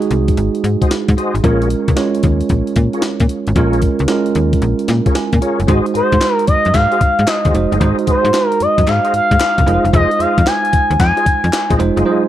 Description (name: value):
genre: R&B, new jack swing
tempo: 113 BPM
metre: 4/4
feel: swing 66% on 16ths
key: unclear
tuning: A4 = 438 Hz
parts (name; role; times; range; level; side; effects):
- bell-like tine electric piano; accompaniment; 0.0-12.3 s; Gb3 to Ab5; -18 LUFS; right 5 dB; none
- breakbeat sampler-style drum kit; drums; 0.0-12.1 s; hi-hat, kick drum, snare drum; -16 LUFS; left 1 dB; none
- slap-like FM bass; bass; 0.1-12.0 s; F1 to Bb2; -16 LUFS; left 1 dB; none
- tonewheel organ; stabs; 0.8-12.2 s; F4 to Eb5; -22 LUFS; left 2 dB; overdrive, chorus vibrato, slow rotary speaker, tape echo
- expressive portamento lead; melody; 6.0-11.8 s; C5 to Ab5; -15 LUFS; left 1 dB; chorus
- group handclap; percussion; 6.2-11.7 s; none; -27 LUFS; left 4 dB; none
room: digital ambience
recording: dry, close 1970s-style studio recording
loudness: -12 LUFS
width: side -12 dB against mid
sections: 0.0-5.7 A section; 5.7-12.3 B section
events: tine electric piano fill 4.9-5.7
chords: 0.0 Ab7; 1.4 Bbm7; 5.7 Ab7; 9.7 Fm7